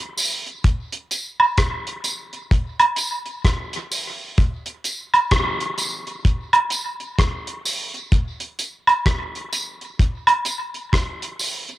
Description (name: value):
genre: reggae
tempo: 64 BPM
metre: 4/4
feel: swing 61% on 16ths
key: none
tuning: none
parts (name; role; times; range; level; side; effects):
- damped 70s drum kit; drums; 0.2-11.8 s; hi-hat, kick drum, rim click; -21 LUFS; equal; cassette tape
- tambourine and woodblock; percussion; 0.2-11.7 s; none; -20 LUFS; right 1 dB; tape echo
room: moderate spring reverb, RT60 2.4 s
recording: home recording on cassette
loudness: -19 LUFS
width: side -16 dB against mid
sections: 0.0-11.8 A section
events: none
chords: none